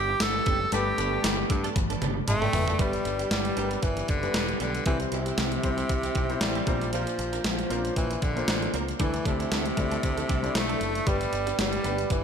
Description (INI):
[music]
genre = 1980s-style pop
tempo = 116 BPM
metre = 4/4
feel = swing 55% on 16ths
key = G major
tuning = A4 = 440 Hz
[part]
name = breathy tenor saxophone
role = melody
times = 0.0-12.2 s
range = C3 to A4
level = -29 LUFS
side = right 1 dB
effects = digital delay, slapback echo
[part]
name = clear baby grand piano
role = accompaniment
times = 0.0-12.2 s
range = G2 to A5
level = -33 LUFS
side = left 5 dB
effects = slapback echo
[part]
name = overdriven picked electric bass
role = bass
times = 0.0-12.2 s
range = E1 to G2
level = -33 LUFS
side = equal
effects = none
[part]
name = direct-recorded clean electric guitar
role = riff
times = 0.1-12.1 s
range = F3 to Bb4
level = -37 LUFS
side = right 7 dB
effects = ensemble chorus, digital delay
[part]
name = clean 12-bit digital drum machine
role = drums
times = 0.2-12.2 s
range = hi-hat, kick drum, snare drum, tambourine, toms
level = -28 LUFS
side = equal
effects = none
[sound]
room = moderate concert hall reverb, RT60 1.8 s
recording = big arena sound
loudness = -24 LUFS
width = side -7 dB against mid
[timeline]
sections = 0.0-2.8 A section; 2.8-12.2 B section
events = drum fill 1.8-2.8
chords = 0.0 Em7/G; 0.7 Gadd9; 2.8 G; 4.9 C; 6.7 Bbadd9; 9.0 Dsus2; 11.1 G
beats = 0.20 | 0.72 1.24 1.76 2.27 | 2.79 3.31 3.83 4.34 | 4.86 5.38 5.89 6.41 | 6.93 7.45 7.96 8.48 | 9.00 9.52 10.03 10.55 | 11.07 11.58 12.10